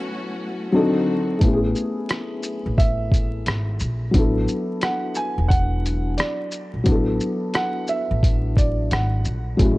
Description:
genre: lo-fi hip hop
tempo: 88 BPM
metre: 4/4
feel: swing 61% on 16ths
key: A major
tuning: A4 = 440 Hz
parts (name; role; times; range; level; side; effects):
- dark upright piano; melody; 0.0-9.4 s; D5 to G#5; -28 LUFS; right 3 dB; none
- felt-muted upright piano; accompaniment; 0.0-9.8 s; F#3 to A4; -24 LUFS; left 2 dB; none
- warm symphonic string section; sustained chords; 0.0-1.4 s; D3 to F#4; -32 LUFS; equal; none
- upright bass; bass; 1.4-9.8 s; E1 to Bb1; -23 LUFS; equal; none
- lo-fi sampler-style drum kit; drums; 1.4-9.8 s; hi-hat, kick drum, rim click, shaker; -20 LUFS; equal; none
room: small room ambience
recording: vinyl crackle, nothing above 11.0 kHz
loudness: -19 LUFS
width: side -20 dB against mid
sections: 0.0-1.4 A section; 1.4-9.8 B section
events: break 0.1-1.4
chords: 0.0 A69; 0.7 D7b9; 1.4 Amaj7; 4.1 Bm7; 6.9 E9sus4/A

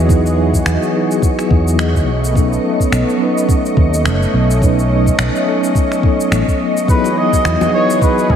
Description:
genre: sunset chillout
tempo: 106 BPM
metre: 4/4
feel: swing 57% on 16ths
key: E major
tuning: A4 = 441 Hz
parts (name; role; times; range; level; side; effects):
- mellow tine electric piano; accompaniment; 0.0-8.4 s; F#3 to B4; -18 LUFS; moving between left 5 dB and right 6 dB; medium stereo tremolo, auto-pan, tape echo
- lush unison pad; sustained chords; 0.0-8.4 s; E3 to D#5; -19 LUFS; equal; chorus
- fretless electric bass; bass; 0.0-8.4 s; F#1 to G#2; -15 LUFS; equal; none
- wind-like tuned noise texture; texture; 0.0-8.4 s; C#5 to C#6; -27 LUFS; left 3 dB; built-in reverb, analog chorus
- electronic kick drum; drums; 0.1-8.4 s; none; -14 LUFS; equal; none
- electronic shaker and finger snaps; drums; 0.1-8.3 s; none; -24 LUFS; equal; none
- trumpet with bucket mute; melody; 6.9-8.4 s; G#4 to D#5; -16 LUFS; right 1 dB; tape echo
- bongos and congas; percussion; 7.0-8.1 s; none; -23 LUFS; left 3 dB; none
room: moderate lush hall reverb, RT60 2.5 s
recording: dreamy mix soaked in reverb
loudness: -12 LUFS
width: side -8 dB against mid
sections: 0.0-8.4 A section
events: none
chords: 0.0 Emaj9; 2.1 B9; 6.9 Emaj9

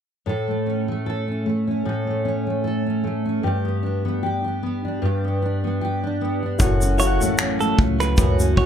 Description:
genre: acoustic pop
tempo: 76 BPM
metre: 4/4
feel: swing 55% on 16ths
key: A major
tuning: A4 = 439 Hz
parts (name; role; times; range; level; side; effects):
- fingerpicked steel-string acoustic guitar; accompaniment; 0.3-8.7 s; F#2 to A4; -21 LUFS; equal; double-tracked left and right
- overdriven reed electric piano; accompaniment; 6.6-8.7 s; E4 to F#5; -27 LUFS; left 5 dB; none
- upright bass; bass; 6.6-8.7 s; F#1 to C#2; -22 LUFS; equal; none
- natural country drum kit; drums; 6.6-8.7 s; finger snaps, kick drum, shaker; -22 LUFS; equal; none
- direct-recorded clean electric guitar; arpeggios; 7.0-8.7 s; A4 to C#5; -25 LUFS; right 6 dB; harmonic tremolo
room: moderate studio reverb, RT60 0.6 s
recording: none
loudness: -20 LUFS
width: side -8 dB against mid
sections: 0.3-6.6 A section; 6.6-8.7 B section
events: none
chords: 0.3 A; 3.4 G; 6.6 F#m7

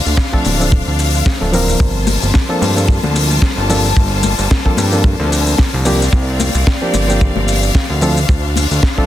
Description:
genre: nu-disco, nu disco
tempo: 111 BPM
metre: 4/4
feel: swing 55% on 16ths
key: G minor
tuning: A4 = 438 Hz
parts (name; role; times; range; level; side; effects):
- clear symphonic string section; sustained chords; 0.0-9.1 s; G3 to A5; -21 LUFS; left 2 dB; sidechain pumping
- fat analog bass; bass; 0.1-8.8 s; D1 to G2; -16 LUFS; equal; none
- tight funk drum kit; drums; 0.1-9.0 s; hi-hat, shaker, snare drum; -20 LUFS; left 3 dB; small room ambience
- kick drum; drums; 0.2-9.1 s; none; -13 LUFS; equal; small room ambience
- barky reed electric piano; accompaniment; 0.3-9.1 s; F3 to Bb4; -20 LUFS; equal; sidechain pumping, dub echo
- congas; percussion; 0.5-8.7 s; none; -24 LUFS; left 4 dB; none
room: little or no reverb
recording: dense, heavily limited modern master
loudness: -12 LUFS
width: side -13 dB against mid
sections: 0.0-9.1 A section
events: none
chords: 0.0 Dm7; 1.8 Gm11; 5.9 C9sus4; 8.0 Dm7

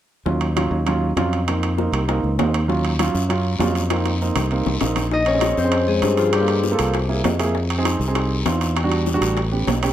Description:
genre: Afro-Cuban jazz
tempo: 198 BPM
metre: 4/4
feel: straight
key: Bb minor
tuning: A4 = 440 Hz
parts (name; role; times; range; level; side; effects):
- warm grand piano; accompaniment; 0.3-9.9 s; Gb3 to A4; -23 LUFS; right 3 dB; none
- modern bright fingered electric bass; bass; 0.3-9.9 s; A1 to G2; -22 LUFS; equal; none
- bongos; percussion; 0.3-9.8 s; none; -28 LUFS; left 9 dB; none
- timbales; percussion; 0.4-9.9 s; none; -27 LUFS; right 4 dB; none
- guiro; percussion; 2.7-9.9 s; none; -34 LUFS; left 6 dB; none
- concert harp; melody; 5.1-8.7 s; F4 to Eb5; -22 LUFS; left 3 dB; plate reverb
- breathy trombone; second line; 5.1-6.6 s; F3 to Eb4; -26 LUFS; left 4 dB; none
room: light reverb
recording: dark, warm production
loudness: -18 LUFS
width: side -11 dB against mid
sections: 0.3-5.1 A section; 5.1-9.9 B section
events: drum fill 3.9-5.1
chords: 0.3 Ebm9; 1.5 F7sus4; 2.7 Ebm9; 3.9 F7sus4; 5.1 Bbm9; 6.3 Gm9; 6.9 C7b13; 7.6 Fm7; 8.8 Em7; 9.4 A9

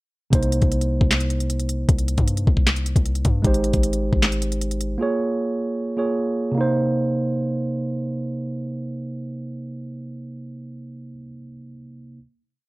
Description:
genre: hip hop, trap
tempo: 154 BPM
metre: 4/4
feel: half-time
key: C phrygian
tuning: A4 = 443 Hz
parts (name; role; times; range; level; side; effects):
- mellow tine electric piano; accompaniment; 0.3-12.2 s; C3 to Db5; -24 LUFS; right 2 dB; none
- warm 808-style bass; bass; 0.3-5.0 s; Ab1 to G2; -22 LUFS; left 1 dB; none
- trap drum kit; drums; 0.3-4.9 s; handclaps, hi-hat, kick drum, snare drum; -20 LUFS; left 1 dB; none
room: little or no reverb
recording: none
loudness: -20 LUFS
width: side -21 dB against mid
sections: 0.3-6.6 hook; 6.6-9.7 final chord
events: none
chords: 0.3 Cm7; 3.4 Abmaj7; 5.0 Bbm7; 6.6 Cm7

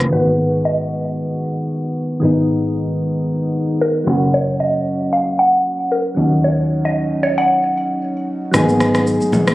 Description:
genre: afrobeats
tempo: 114 BPM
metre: 4/4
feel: swing 55% on 16ths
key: unclear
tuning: A4 = 440 Hz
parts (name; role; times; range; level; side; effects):
- soft electric-piano-like synth keys; accompaniment; 0.0-9.5 s; D#3 to G#4; -18 LUFS; equal; chorus
- fingered electric bass; bass; 0.0-9.5 s; F#1 to D#2; -21 LUFS; equal; none
- electronic shaker and rim click; drums; 0.0-0.1, 8.5-9.5 s; none; -20 LUFS; equal; vintage 12-bit sampler grit
- mallet-like synth pluck; melody; 0.1-8.2 s; A#4 to F#5; -18 LUFS; equal; chorus, phaser, digital delay
- congas; percussion; 8.5-9.5 s; none; -24 LUFS; left 1 dB; none
room: light reverb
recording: recorded on a phone in the room, club reverb, compression, low-pass filter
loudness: -15 LUFS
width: side -17 dB against mid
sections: 0.1-8.5 A section; 8.5-9.5 B section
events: filter sweep 0.1-8.5; kick muted 8.5-9.5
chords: 0.1 G#m7; 4.1 F#; 6.2 D#m7; 8.5 G#m7

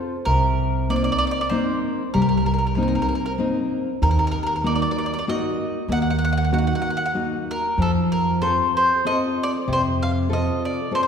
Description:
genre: italian folk, Italian serenade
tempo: 96 BPM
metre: 3/4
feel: straight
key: unclear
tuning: A4 = 440 Hz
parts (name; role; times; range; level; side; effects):
- nylon-string guitar; accompaniment; 0.0-11.1 s; C3 to A4; -23 LUFS; left 2 dB; none
- mandolin; melody; 0.3-11.1 s; A4 to Gb5; -23 LUFS; equal; none
- upright bass; bass; 0.3-10.5 s; C2 to F2; -24 LUFS; right 2 dB; none
room: wet concert hall reverb, RT60 2.2 s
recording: heard from further back in the room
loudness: -19 LUFS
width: side -7 dB against mid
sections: 0.0-11.1 A section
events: none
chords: 0.3 Cm7; 4.0 Ebm; 7.8 F

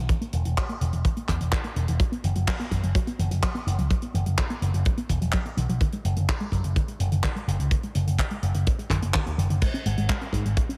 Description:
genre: italo disco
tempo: 126 BPM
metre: 4/4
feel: straight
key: unclear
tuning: A4 = 440 Hz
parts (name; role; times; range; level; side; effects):
- analog pluck; arpeggios; 0.0-10.7 s; D#2 to C#4; -34 LUFS; equal; chorus, delay
- picked electric bass with an envelope filter; bass; 0.0-10.5 s; E1 to G#2; -27 LUFS; equal; none
- kick drum; drums; 0.1-10.7 s; none; -28 LUFS; equal; none
- tight funk drum kit; drums; 0.1-10.8 s; crash cymbal, handclaps, hi-hat; -35 LUFS; equal; none
room: light reverb, small room ambience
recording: heavily compressed radio sound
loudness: -25 LUFS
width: mono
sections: 0.0-10.8 A section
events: filter sweep on synth arpeggio sound 0.0-10.8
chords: 0.0 E5; 2.0 F#sus4; 5.8 D#m/F#; 9.6 N.C.

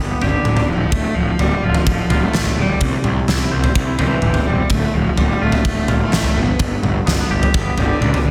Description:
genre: quiet-loud alternative rock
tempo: 127 BPM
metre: 4/4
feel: straight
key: unclear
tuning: A4 = 440 Hz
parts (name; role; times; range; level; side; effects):
- twangy electric guitar; arpeggios; 0.0-8.3 s; D2 to C5; -26 LUFS; equal; tremolo
- fuzz picked electric bass; bass; 0.0-8.3 s; D1 to C#2; -23 LUFS; equal; overdrive
- rich cello; melody; 0.2-8.3 s; D3 to B3; -24 LUFS; equal; slapback echo
- big rock drum kit; drums; 0.2-8.2 s; kick drum, snare drum, toms; -20 LUFS; equal; soft clipping on kick
room: light reverb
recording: dense, heavily limited modern master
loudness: -17 LUFS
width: mono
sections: 0.0-8.3 A section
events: none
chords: 0.0 G; 0.7 Dm; 2.8 C; 4.7 Dm; 6.4 G

